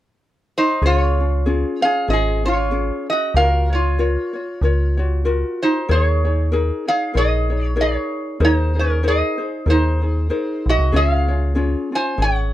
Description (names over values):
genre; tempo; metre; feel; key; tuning
Hawaiian; 95 BPM; 4/4; swing 56% on 8ths; Db major; A4 = 445 Hz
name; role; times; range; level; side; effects
metal-body resonator slide guitar; melody; 0.6-12.5 s; Db4 to Ab5; -20 LUFS; right 1 dB; none
ukulele; accompaniment; 0.8-12.5 s; Db4 to Db5; -24 LUFS; left 3 dB; none
metallic FM bass; bass; 0.8-12.5 s; Ab1 to Eb2; -18 LUFS; equal; none
room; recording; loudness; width
light reverb; dry, close 1970s-style studio recording; -16 LUFS; side -13 dB against mid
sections
0.8-12.5 A section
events
none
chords
0.0 N.C.; 0.8 Dbmaj7; 3.4 Gbmaj7/Db; 5.9 Eb7sus4; 8.4 Abadd9/Eb; 10.9 Db